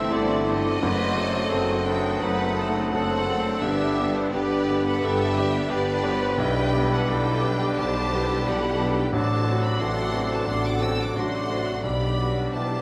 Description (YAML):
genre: classical, romantic movement for piano and orchestra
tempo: 86 BPM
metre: 4/4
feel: rubato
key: G major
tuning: A4 = 439 Hz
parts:
  - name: clear grand piano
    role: melody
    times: 0.0-12.8 s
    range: A1 to A4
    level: -30 LUFS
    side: equal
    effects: none
  - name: warm studio violin section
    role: melody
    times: 0.0-12.8 s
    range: C5 to E6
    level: -36 LUFS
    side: equal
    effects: none
  - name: bright small flute group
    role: second line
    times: 0.0-12.8 s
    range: B5 to D#6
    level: -38 LUFS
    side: equal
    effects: none
  - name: mellow cor anglais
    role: second line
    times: 0.0-12.8 s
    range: G4 to E5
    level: -38 LUFS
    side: equal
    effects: none
  - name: warm clarinet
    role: second line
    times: 0.0-12.8 s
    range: A3 to E4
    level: -37 LUFS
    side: equal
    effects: none
  - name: warm studio violin section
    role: second line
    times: 0.0-12.8 s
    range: E4 to G5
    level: -39 LUFS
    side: equal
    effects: none
  - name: rich studio viola section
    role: accompaniment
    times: 0.0-12.8 s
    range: F#3 to D4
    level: -37 LUFS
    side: equal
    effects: none
  - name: warm bassoon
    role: accompaniment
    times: 0.0-12.8 s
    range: D3 to A3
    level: -37 LUFS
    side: equal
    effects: none
  - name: clear trombone section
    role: sustained chords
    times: 0.0-12.8 s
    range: B2 to B3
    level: -37 LUFS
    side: equal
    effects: none
  - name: mellow French horn section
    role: sustained chords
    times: 0.0-12.8 s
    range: C4 to A4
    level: -35 LUFS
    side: equal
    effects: none
  - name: dark trumpet section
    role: stabs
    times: 0.0-12.8 s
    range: B4 to D5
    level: -37 LUFS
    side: equal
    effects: none
  - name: rich studio cello section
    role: bass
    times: 0.0-12.8 s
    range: D4 to B4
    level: -36 LUFS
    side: equal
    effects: none
  - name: rich studio double bass section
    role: bass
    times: 0.0-12.8 s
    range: F#1 to B1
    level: -35 LUFS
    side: equal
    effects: none
  - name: warm tuba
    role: bass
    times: 0.0-12.8 s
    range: F#1 to B1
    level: -36 LUFS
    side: equal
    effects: none
  - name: timpani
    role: percussion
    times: 3.6-4.6 s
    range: none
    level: barely audible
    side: none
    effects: none
room: wet scoring stage reverb, RT60 1.7 s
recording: none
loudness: -24 LUFS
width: mono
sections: 0.0-12.8 A section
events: none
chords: 0.0 Am7/G; 0.8 F#dim7; 3.6 G; 6.4 G/B; 9.1 D7/A; 11.8 G/B